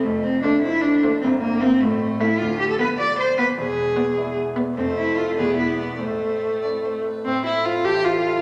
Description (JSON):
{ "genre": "quick classical-period movement for piano quartet", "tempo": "101 BPM (dotted quarters)", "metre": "6/8", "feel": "straight", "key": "A minor", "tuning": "A4 = 440 Hz", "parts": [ { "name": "clear cello", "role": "second line", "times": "0.0-8.4 s", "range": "E3 to D5", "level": "-23 LUFS", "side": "equal", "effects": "none" }, { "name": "bright concert grand piano", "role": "accompaniment", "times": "0.0-8.4 s", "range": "E1 to A5", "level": "-32 LUFS", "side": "equal", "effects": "none" }, { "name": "rich violin", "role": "melody", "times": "0.4-8.4 s", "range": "B4 to G5", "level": "-38 LUFS", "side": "equal", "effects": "none" }, { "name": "bright viola", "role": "accompaniment", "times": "0.4-8.4 s", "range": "A3 to G4", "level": "-26 LUFS", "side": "equal", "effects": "none" } ], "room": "wet recital hall reverb, RT60 1.6 s", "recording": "none", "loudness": "-21 LUFS", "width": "mono", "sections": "0.0-7.3 A section; 7.3-8.4 A section", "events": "none", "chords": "0.1 F; 1.2 C7/G; 1.8 F/A; 2.4 Bdim/D; 3.6 E7; 4.8 F; 5.4 E5; 6.0 Am", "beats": "| 0.05 0.64 | 1.23 1.82 | 2.40 2.98 | 3.57 4.17 | 4.77 5.38 | 6.00 6.63 | 7.25 7.85" }